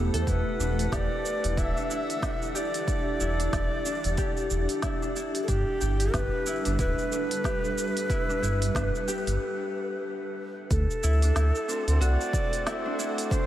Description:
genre	organic downtempo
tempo	92 BPM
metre	4/4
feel	swing 58% on 16ths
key	E minor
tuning	A4 = 437 Hz
part	granular cloud pad	sustained chords	0.0-13.5 s	G3 to F#5	-35 LUFS	right 1 dB	built-in reverb, sidechain pumping
part	Celtic harp	arpeggios	0.0-13.5 s	B3 to A4	-34 LUFS	left 3 dB	diffuse ambient delay
part	smooth gliding synth bass	bass	0.0-12.2 s	D1 to E2	-26 LUFS	equal	sidechain pumping
part	drifting glass-harmonics texture	texture	0.0-13.5 s	F#4 to F#5	-44 LUFS	right 1 dB	chorus, built-in reverb
part	organic electronic drum kit	drums	0.1-13.5 s	cabasa, hi-hat, snare drum	-36 LUFS	right 2 dB	none
part	breathy bright Native American-style cedar flute	melody	0.2-13.5 s	G4 to E5	-32 LUFS	equal	diffuse ambient delay
part	electronic kick drum	drums	0.3-13.5 s	none	-30 LUFS	equal	overdrive
part	pedal harmonium	accompaniment	11.7-13.5 s	A3 to C5	-34 LUFS	right 3 dB	sidechain pumping, diffuse ambient delay
room	moderate huge ambient reverb, RT60 7.7 s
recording	dreamy mix soaked in reverb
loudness	-25 LUFS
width	side -12 dB against mid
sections	0.0-10.7 A section; 10.7-13.5 B section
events	break 9.4-10.7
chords	0.3 Em7; 10.7 D7

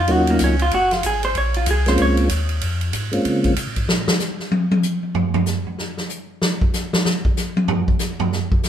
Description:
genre	soul jazz organ trio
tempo	190 BPM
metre	4/4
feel	swing 62% on 8ths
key	Bb minor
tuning	A4 = 440 Hz
part	vintage hollow-body jazz guitar	accompaniment	0.0-2.6 s	Bb3 to Db5	-20 LUFS	equal	none
part	tonewheel organ	bass	0.0-4.1 s	Gb1 to Db3	-22 LUFS	equal	chorus vibrato, slow rotary speaker
part	percussive tonewheel organ	melody	0.1-3.5 s	Gb3 to F4	-19 LUFS	equal	slow rotary speaker, chorus vibrato
part	swinging big-band drum kit	drums	0.1-8.7 s	hi-hat, kick drum, ride cymbal, snare drum, toms	-20 LUFS	equal	none
room	light reverb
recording	minimal, uncompressed stereo recording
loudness	-17 LUFS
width	side -10 dB against mid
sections	0.0-8.7 A section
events	hollow-body jazz guitar solo 0.0-8.7; drum solo 3.9-8.7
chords	0.1 Ebm7; 1.4 Bbm7; 3.9 N.C.

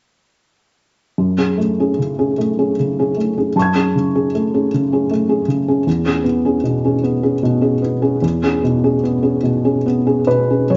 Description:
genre	neoclassical minimalist piano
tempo	67-79 BPM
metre	3/4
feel	rubato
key	F# minor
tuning	A4 = 441 Hz
part	felt-muted upright piano	solo	1.2-10.8 s	E2 to G#6	-17 LUFS	equal	slapback echo
room	moderate studio reverb, RT60 0.7 s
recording	nothing above 7.8 kHz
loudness	-17 LUFS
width	mono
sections	1.2-10.7 A section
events	none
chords	1.2 F#madd9; 5.9 C#m7/E

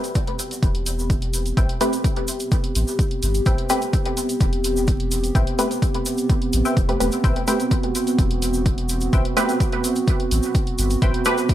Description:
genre	dub techno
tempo	127 BPM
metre	4/4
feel	straight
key	unclear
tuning	A4 = 440 Hz
part	dark analog pad	sustained chords	0.0-11.5 s	B3 to G4	-25 LUFS	right 2 dB	chorus, sidechain pumping
part	filtered dub chord stab	riff	0.0-11.2 s	B4 to G5	-31 LUFS	left 2 dB	chorus, vintage 12-bit sampler grit, sidechain pumping, dub echo
part	filtered dub chord stab	stabs	0.0-11.4 s	A3 to B4	-25 LUFS	equal	chorus, phaser, vintage 12-bit sampler grit, sidechain pumping, dub echo
part	electronic hi-hat	drums	0.0-11.5 s	none	-33 LUFS	right 1 dB	none
part	tube shaker	percussion	0.0-11.5 s	none	-31 LUFS	right 1 dB	none
part	electronic kick drum	drums	0.2-11.5 s	none	-21 LUFS	equal	overdrive
part	soft dub sub bass	bass	0.6-11.1 s	E1 to A1	-24 LUFS	equal	sidechain pumping
room	digital ambience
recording	vinyl crackle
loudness	-18 LUFS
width	side -12 dB against mid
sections	0.0-11.5 A section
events	none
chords	0.0 Am9

